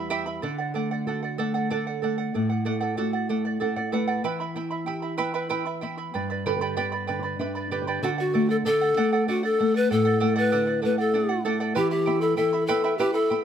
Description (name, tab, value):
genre	andean folk, Andean ensemble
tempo	95 BPM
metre	3/4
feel	straight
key	unclear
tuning	A4 = 440 Hz
part	charango	accompaniment	0.0-13.4 s	E4 to B5	-29 LUFS	right 5 dB	none
part	nylon-string guitar	accompaniment	0.0-13.4 s	E2 to F#5	-27 LUFS	equal	none
part	mellow polished pan flute	melody	8.0-13.4 s	F#4 to B4	-23 LUFS	left 2 dB	none
room	light reverb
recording	close, detailed microphones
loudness	-23 LUFS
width	side -8 dB against mid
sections	0.4-8.0 A section; 8.0-13.4 B section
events	nylon-string guitar fill 3.3-4.2, 6.1-8.0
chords	0.4 D; 4.2 Em; 6.1 G; 8.0 D; 11.8 Em